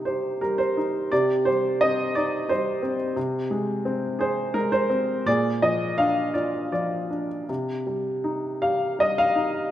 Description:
classical, lyrical solo piano; 78-91 BPM; 3/4; rubato; C minor; A4 = 440 Hz
warm upright piano; solo; 0.0-9.7 s; Bb2 to F5; -22 LUFS; equal
moderate concert hall reverb, RT60 2.4 s; -22 LUFS; side -12 dB against mid
0.0-9.7 A section
0.0 Cm; 3.2 Abadd9/C; 5.3 Bb7; 7.5 Cm

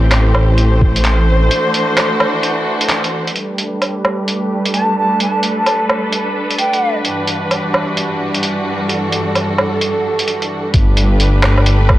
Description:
future garage; 130 BPM; 4/4; swing 64% on 16ths; A4 = 439 Hz
clear studio string section; sustained chords; 0.0-12.0 s; G2 to C5; -17 LUFS; equal; sidechain pumping, low-pass filter
dark detuned saw bass; bass; 0.0-1.5, 10.7-12.0 s; G1 to A1; -12 LUFS; equal; tube saturation, sidechain pumping
lo-fi sampler-style drum kit; drums; 0.1-12.0 s; handclaps, hi-hat, woodblock; -17 LUFS; right 1 dB
electronic kick drum; drums; 0.8-0.9, 10.7-12.0 s; -12 LUFS; equal
concert flute; melody; 4.7-7.0 s; G5 to A5+20c; -18 LUFS; right 1 dB; tape echo
light reverb; dry, gritty hardware recording; -13 LUFS; side -15 dB against mid
0.0-3.4 A section; 3.4-10.7 B section; 10.7-12.0 C section
break 1.5-3.4; band accent 2.9; filter sweep on string section 3.4-10.7
0.0 Am7; 1.5 D9; 3.4 Gadd9; 7.0 Em9/G; 10.7 Gadd9

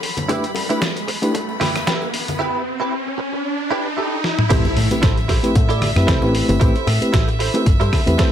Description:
nu-disco, nu disco; 114 BPM; 4/4; swing 55% on 16ths; A minor; A4 = 440 Hz
rich chamber violin section; sustained chords; 0.0-8.3 s; E5 to B5; -28 LUFS; equal; sidechain pumping
overdriven picked electric bass; bass; 0.0-8.2 s; E1 to A2; -20 LUFS; equal; tube saturation, high-pass filter
dusty soul sampler-style drum kit; drums; 0.0-8.3 s; crash cymbal, hi-hat, rim click, snare drum, toms; -24 LUFS; left 1 dB; small room ambience
riser and impact; sound effects; 0.0-6.6 s; -25 LUFS; equal
direct-recorded clean electric guitar; riff; 0.2-8.3 s; E4 to D5; -24 LUFS; right 4 dB; ensemble chorus, low-pass filter, tape echo
bongos, tambourine and congas; percussion; 0.2-8.3 s; -29 LUFS; left 3 dB
mellow reed electric piano; accompaniment; 0.3-8.3 s; A3 to B4; -22 LUFS; equal; medium tremolo, sidechain pumping, tape echo
electronic kick drum; drums; 0.3-8.3 s; -18 LUFS; equal; high-pass filter on kick, small room ambience
light reverb; -16 LUFS; side -10 dB against mid
0.0-4.5 A section; 4.5-8.3 B section
build-up 0.0-4.5; riser 0.0-4.5; drum fill 4.2; drop 4.5-8.3; impact 4.5-6.6
0.3 G6; 4.5 Am7

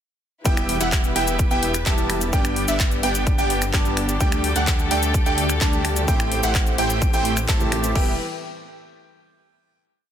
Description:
EDM, festival progressive house; 128 BPM; 4/4; straight; E minor; A4 = 440 Hz
warm concert grand piano; accompaniment; 0.4-8.1 s; G2 to G4; -30 LUFS; equal; vintage 12-bit sampler grit, sidechain pumping, ping-pong delay
warm studio string section; sustained chords; 0.5-8.2 s; D3 to B4; -31 LUFS; left 2 dB; sidechain pumping
warm concert grand piano; arpeggios; 0.5-8.1 s; E5 to A5; -28 LUFS; right 3 dB; sidechain pumping, ping-pong delay
supersaw stab; riff; 0.5-8.1 s; A3 to A5; -26 LUFS; right 1 dB; sidechain pumping, ping-pong delay
detuned saw bass; bass; 0.5-8.2 s; E1 to D2; -26 LUFS; equal; sidechain pumping
big-room dance drum kit; drums; 0.5-8.0 s; cabasa, crash cymbal, finger snaps, handclaps, hi-hat; -26 LUFS; left 2 dB; soft clipping on snare
electronic kick drum; drums; 0.5-8.0 s; -21 LUFS; equal
little or no reverb; dense, heavily limited modern master; -18 LUFS; side -9 dB against mid
0.5-8.0 drop; 8.0-9.8 final chord
drop 0.5-8.0
0.5 Em; 2.3 G; 4.2 Dsus4; 6.1 Am7; 8.0 Em

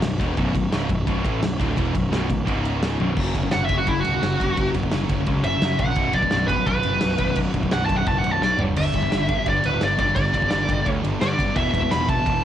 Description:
heavy metal; 171 BPM; 4/4; straight; B minor; A4 = 440 Hz
distorted electric guitar; riff; 0.0-12.4 s; B1 to A3; -28 LUFS; left 8 dB; distortion
distorted electric guitar; riff; 0.0-12.4 s; B1 to A3; -31 LUFS; right 1 dB; overdrive
fuzz picked electric bass; bass; 0.0-12.4 s; B0 to G2; -26 LUFS; equal; overdrive
modern studio drum kit; drums; 0.0-12.3 s; crash cymbal, kick drum, ride cymbal, snare drum, toms; -26 LUFS; equal; cassette tape
sludgy distorted guitar; riff; 0.4-12.4 s; B1 to A3; -30 LUFS; right 8 dB; overdrive
high-gain lead guitar; melody; 3.5-12.4 s; E4 to B5; -23 LUFS; right 1 dB; distortion, cassette tape
little or no reverb; home recording on cassette; -19 LUFS; side -10 dB against mid
0.0-3.2 A section; 3.2-12.4 B section
drum fill 3.0, 8.4-8.8; lead electric guitar solo 3.2-12.4
0.0 Bm; 2.5 C#5; 3.0 B5; 3.2 F#5; 6.0 B5; 8.6 G5; 11.6 E5

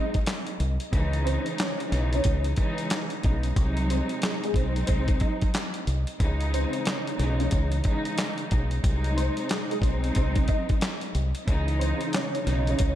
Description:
hip hop, boom-bap hip-hop; 91 BPM; 4/4; swing 61% on 16ths; C# harmonic minor; A4 = 440 Hz
dark upright piano; melody; 0.0-13.0 s; G#3 to D#5; -33 LUFS; equal; ensemble chorus, high-pass filter, low-pass filter, tape echo
warm studio string section; accompaniment; 0.0-13.0 s; B#2 to D#4; -31 LUFS; right 1 dB; cassette tape, high-pass filter, low-pass filter
dusty soul sampler-style drum kit; drums; 0.1-13.0 s; handclaps, hi-hat, kick drum, snare drum; -28 LUFS; equal
deep dub fingered electric bass; bass; 0.6-13.0 s; B1 to C#2; -26 LUFS; equal
light reverb, digital ambience; -24 LUFS; side -12 dB against mid
0.0-13.0 A section
0.0 G#7; 0.9 C#madd9; 3.6 G#7; 6.2 C#madd9; 8.8 G#7; 11.5 C#madd9

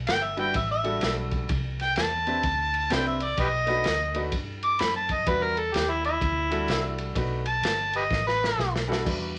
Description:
electric blues shuffle; 127 BPM; 4/4; swing 64% on 8ths; A4 = 441 Hz
vintage muted fingered electric bass; bass; 0.0-9.4 s; G1 to G2; -35 LUFS; equal
overdriven harmonica; second line; 0.1-8.7 s; E4 to D6; -28 LUFS; equal
crunchy breakbeat drum kit; drums; 0.1-9.4 s; crash cymbal, hi-hat, kick drum, ride cymbal, snare drum; -33 LUFS; equal
clear upright piano; accompaniment; 0.4-9.3 s; G3 to B4; -33 LUFS; equal
wet small room reverb, RT60 0.5 s; -26 LUFS; mono
0.0-9.1 A section
harmonica solo 0.0-9.1; drum fill 8.1-9.1
0.0 Em7; 1.5 Cmaj7; 3.4 B7#9; 5.3 Em7; 7.2 B7#9

